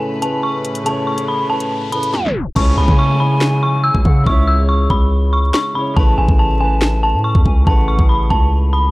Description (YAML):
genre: hip hop, drill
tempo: 141 BPM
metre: 4/4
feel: half-time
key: C# minor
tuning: A4 = 439 Hz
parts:
  - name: warm concert grand piano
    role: accompaniment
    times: 0.0-8.9 s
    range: C#3 to C#5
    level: -23 LUFS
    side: equal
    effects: none
  - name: warm chamber string section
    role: sustained chords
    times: 0.0-2.5 s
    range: A2 to B4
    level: -27 LUFS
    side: equal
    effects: none
  - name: riser and downlifter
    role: sound effects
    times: 0.0-6.0 s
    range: none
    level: -32 LUFS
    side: left 1 dB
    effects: none
  - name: dark detuned synth bell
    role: melody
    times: 0.2-8.9 s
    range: G#5 to E6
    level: -19 LUFS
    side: equal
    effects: chorus
  - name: drill drum kit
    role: drums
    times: 0.2-8.4 s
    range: crash cymbal, hi-hat, kick drum, snare drum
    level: -15 LUFS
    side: equal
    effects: none
  - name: hollow concert flute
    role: second line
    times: 2.6-8.1 s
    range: E5 to A5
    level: -28 LUFS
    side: equal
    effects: analog delay
  - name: long sustained 808-style bass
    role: bass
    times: 2.6-8.9 s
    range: A1 to C#3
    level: -15 LUFS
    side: equal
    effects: none
room: little or no reverb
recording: dry, gritty hardware recording, vinyl crackle, tape stop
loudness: -13 LUFS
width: side -20 dB against mid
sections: 0.0-2.6 A section; 2.6-8.9 B section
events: riser 0.0-2.6; drum fill 2.1-2.6; tape stop 2.1-2.6; hi-hats muted 2.6-8.9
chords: 0.0 Aadd9; 2.6 C#m; 6.0 Aadd9